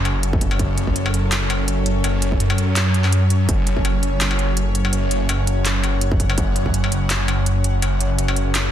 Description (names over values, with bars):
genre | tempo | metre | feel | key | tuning
half-time drum and bass | 166 BPM | 4/4 | swing 55% on 16ths, half-time | F# minor | A4 = 445 Hz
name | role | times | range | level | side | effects
bowed-like drone | sustained chords | 0.0-8.7 s | F#3 to F#5 | -24 LUFS | equal | built-in reverb, sidechain pumping
phased detuned saw bass | bass | 0.0-8.7 s | F#1 to F#2 | -19 LUFS | equal | phaser, tube saturation
industrial drum kit | drums | 0.1-8.6 s | handclaps, hi-hat, struck metal | -24 LUFS | left 1 dB | none
electronic kick drum | drums | 0.3-3.8, 6.1-6.7 s | none | -22 LUFS | equal | distortion
room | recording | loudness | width
little or no reverb | dense, heavily limited modern master | -17 LUFS | side -10 dB against mid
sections
0.0-8.7 A section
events
kick drops out 2.8-3.5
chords
0.0 F#5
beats
0.23 | 0.59 0.96 1.32 1.68 | 2.04 2.40 2.76 3.12 | 3.49 3.85 4.21 4.57 | 4.93 5.29 5.65 6.02 | 6.38 6.74 7.10 7.46 | 7.82 8.19 8.55